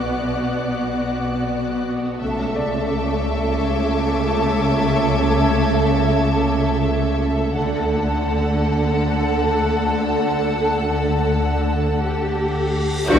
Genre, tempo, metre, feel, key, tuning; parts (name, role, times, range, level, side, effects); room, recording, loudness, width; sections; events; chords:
cinematic, suspense film score; 89 BPM; 4/4; straight; A4 = 441 Hz
warm symphonic violin section; melody; 0.0-13.2 s; D5 to F#5; -28 LUFS; left 2 dB
warm symphonic violin section; second line; 0.0-13.2 s; F#4 to D5; -25 LUFS; equal
warm symphonic viola section; accompaniment; 0.0-13.2 s; G3 to B3; -24 LUFS; equal
rich symphonic double bass section; bass; 0.0-13.2 s; B1 to D2; -23 LUFS; equal
warm symphonic cello section; bass; 0.0-13.2 s; B2 to G4; -24 LUFS; right 2 dB
bright grand piano; texture; 0.0-13.2 s; D5 to G6; -35 LUFS; left 2 dB
warm symphonic violin section; texture; 0.0-13.2 s; F#5 to G#6; -33 LUFS; left 3 dB
reverse cymbal and impact; sound effects; 12.4-13.2 s; -31 LUFS; equal
mellow French horn section; sustained chords; 13.1-13.2 s; E3 to D4; -15 LUFS; left 5 dB
wet cathedral reverb, RT60 4.2 s; heard from further back in the room; -18 LUFS; side -8 dB against mid
0.0-13.1 A section
reverse cymbal 12.4-13.1
0.0 Bm; 2.2 A/C#; 7.6 D